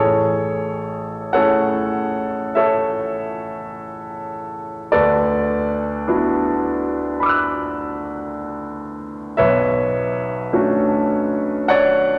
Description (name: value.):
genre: classical, impressionist solo piano.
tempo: 40-55 BPM.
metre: 4/4.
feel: rubato.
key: A major.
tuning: A4 = 441 Hz.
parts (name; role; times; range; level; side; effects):
clear grand piano; solo; 0.0-12.2 s; A1 to F#6; -20 LUFS; equal; none.
room: wet concert hall reverb, RT60 2.1 s.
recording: none.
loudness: -20 LUFS.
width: mono.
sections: 0.0-12.2 A section.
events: none.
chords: 0.0 Amaj7; 4.9 D69; 9.4 Bm11.